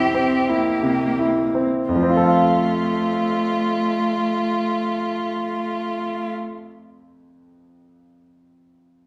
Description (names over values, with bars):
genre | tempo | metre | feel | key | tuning
classical, slow romantic movement for piano quartet | 45 BPM | 4/4 | rubato | F major | A4 = 438 Hz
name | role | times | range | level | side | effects
rich violin | melody | 0.0-6.3 s | F4 to G4 | -26 LUFS | equal | none
warm cello | second line | 0.0-6.3 s | A3 to C4 | -28 LUFS | equal | none
bright grand piano | accompaniment | 0.0-9.1 s | F2 to F5 | -22 LUFS | equal | none
room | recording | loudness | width
wet recital hall reverb, RT60 1.2 s | recorded in a church or concert hall | -21 LUFS | mono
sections
0.0-1.9 A section; 1.9-7.2 B section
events
slowing down 0.0-1.9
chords
0.0 C7/F; 1.9 F